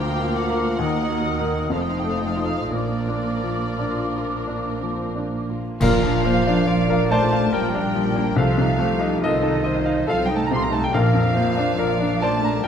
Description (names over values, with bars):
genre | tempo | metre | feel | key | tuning
classical, romantic movement for piano and orchestra | 56-72 BPM | 3/4 | rubato | Bb major | A4 = 438 Hz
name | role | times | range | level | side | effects
clear baby grand piano | melody | 0.0-12.7 s | Bb1 to C6 | -23 LUFS | left 2 dB | none
dark studio violin section | melody | 0.0-12.6 s | A4 to G5 | -35 LUFS | left 3 dB | none
mellow hollow large flute ensemble | second line | 0.0-12.7 s | Eb5 to Eb6 | -30 LUFS | right 1 dB | none
warm clarinet | second line | 0.0-12.7 s | G4 to D5 | -31 LUFS | left 2 dB | none
warm studio violin section | second line | 0.0-12.7 s | F4 to C6 | -31 LUFS | equal | none
dark symphonic viola section | accompaniment | 0.0-12.7 s | A3 to Gb4 | -30 LUFS | right 2 dB | none
warm bassoon | accompaniment | 0.0-5.4 s | Eb3 to F3 | -32 LUFS | right 2 dB | none
dark French horn section | sustained chords | 0.0-12.7 s | Eb3 to F4 | -29 LUFS | left 4 dB | none
dark studio cello section | bass | 0.0-12.7 s | D2 to C4 | -30 LUFS | right 4 dB | none
dark symphonic double bass section | bass | 0.0-12.7 s | F1 to Eb2 | -28 LUFS | right 5 dB | none
cymbal swell, clash cymbals and concert bass drum | percussion | 2.7-7.5 s | none | -29 LUFS | right 1 dB | none
timpani | percussion | 5.8-12.2 s | Bb2 | -28 LUFS | right 1 dB | none
room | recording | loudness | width
moderate scoring stage reverb, RT60 1.7 s | none | -19 LUFS | side -8 dB against mid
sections
0.0-5.8 A section; 5.8-12.7 A section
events
band accent 5.8-6.7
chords
0.0 Bb/D; 0.8 Ebm; 1.7 F7; 2.7 Bb; 8.4 F7/C; 10.9 Bb